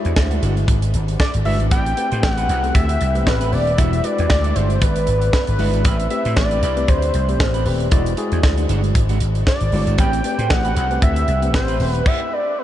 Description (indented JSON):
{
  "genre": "early-eighties boogie funk",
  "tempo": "116 BPM",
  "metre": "4/4",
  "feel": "swing 56% on 16ths",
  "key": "A dorian",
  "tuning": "A4 = 441 Hz",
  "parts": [
    { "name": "tine electric piano", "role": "accompaniment", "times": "0.0-12.0 s", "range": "G#3 to E5", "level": "-27 LUFS", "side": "left 3 dB", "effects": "medium stereo tremolo" },
    { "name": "electric guitar at the edge of break-up", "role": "riff", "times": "0.0-12.0 s", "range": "G#3 to C5", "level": "-30 LUFS", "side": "right 5 dB", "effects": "wide subtle chorus" },
    { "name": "tight funk drum kit", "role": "drums", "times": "0.0-12.2 s", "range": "crash cymbal, hi-hat, kick drum, snare drum", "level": "-20 LUFS", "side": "equal", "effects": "none" },
    { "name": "vintage slap bass", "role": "bass", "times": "0.1-12.0 s", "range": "D#1 to A2", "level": "-19 LUFS", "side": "equal", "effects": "none" },
    { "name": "fat analog lead", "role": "melody", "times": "1.2-12.6 s", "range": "B4 to G5", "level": "-22 LUFS", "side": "equal", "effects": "tape echo" }
  ],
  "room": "moderate huge ambient reverb, RT60 9.1 s",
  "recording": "dreamy mix soaked in reverb, nothing above 10.6 kHz",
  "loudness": "-16 LUFS",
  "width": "side -12 dB against mid",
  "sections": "0.0-12.6 A section",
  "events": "none",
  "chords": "0.0 E9; 1.7 Am9; 3.8 E9; 5.8 Am9; 7.9 E9; 10.0 Am9; 12.1 N.C."
}